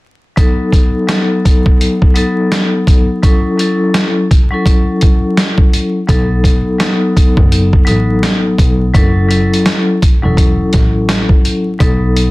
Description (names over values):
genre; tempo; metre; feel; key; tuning
hip hop, boom-bap hip-hop; 84 BPM; 4/4; swing 60% on 16ths; unclear; A4 = 440 Hz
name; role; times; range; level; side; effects
vibraphone with medium hard mallets; accompaniment; 0.4-12.3 s; F#3 to A4; -14 LUFS; left 1 dB; high-pass filter, low-pass filter
trip hop sampler-style drum kit; drums; 0.4-12.3 s; hi-hat, kick drum, snare drum; -11 LUFS; equal; none
clear double bass; bass; 6.1-12.3 s; E1 to B1; -15 LUFS; equal; none
room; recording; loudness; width
light reverb; dense, heavily limited modern master, vinyl crackle; -9 LUFS; side -20 dB against mid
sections
0.4-11.8 A section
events
none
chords
0.4 B7; 3.2 F#m7; 6.1 B7; 8.9 F#m7; 11.8 B7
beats
| 0.37 1.09 1.80 2.52 | 3.23 3.94 4.66 5.37 | 6.09 6.80 7.51 8.23 | 8.94 9.66 10.37 11.09 | 11.80